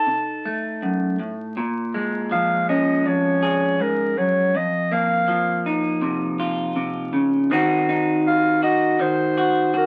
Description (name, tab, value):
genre	acoustic folk-pop ballad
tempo	81 BPM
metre	4/4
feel	straight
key	Bb minor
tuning	A4 = 440 Hz
part	warm clarinet	melody	0.0-9.9 s	Bb4 to A5	-24 LUFS	equal	none
part	electric guitar through a small old amp	accompaniment	0.0-9.9 s	F2 to A4	-23 LUFS	equal	none
room	moderate studio ambience, RT60 0.5 s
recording	very old 78 rpm record, vinyl crackle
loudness	-21 LUFS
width	mono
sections	0.0-1.6 A section; 1.6-9.9 B section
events	none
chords	0.0 F7 (rootless); 1.6 Bbm7; 4.5 F7sus4; 7.5 Cdim/Eb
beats	0.07 0.82 | 1.57 2.32 3.06 3.80 | 4.55 5.29 6.03 6.77 | 7.51 8.25 8.99 9.74